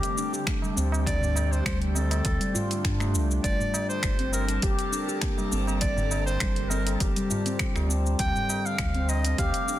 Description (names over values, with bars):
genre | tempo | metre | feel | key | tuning
organic downtempo | 101 BPM | 4/4 | swing 54% on 16ths | G minor | A4 = 440 Hz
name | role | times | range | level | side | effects
clear clarinet | melody | 0.0-9.8 s | G4 to G5 | -33 LUFS | equal | digital delay, shimmer reverb
airy breathy pad | sustained chords | 0.0-9.8 s | D3 to Bb4 | -36 LUFS | left 1 dB | chorus, phaser, sidechain pumping, shimmer reverb
handpan | arpeggios | 0.0-9.8 s | D3 to G4 | -30 LUFS | left 1 dB | digital delay, shimmer reverb
deep house drum kit | drums | 0.0-9.8 s | finger snaps, hi-hat, shaker | -32 LUFS | equal | overdrive, studio reverb, soft clipping on snare
tabla | percussion | 0.0-9.7 s | none | -37 LUFS | right 1 dB | none
electronic kick drum | drums | 0.5-9.5 s | none | -30 LUFS | equal | overdrive, studio reverb
warm sub bass | bass | 0.8-9.5 s | G1 to G2 | -27 LUFS | equal | sidechain pumping
room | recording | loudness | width
light reverb, studio reverb | dense, heavily limited modern master | -24 LUFS | side -13 dB against mid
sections
0.0-9.8 A section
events
none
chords
0.0 D7sus4; 3.4 Gm; 8.2 D7sus4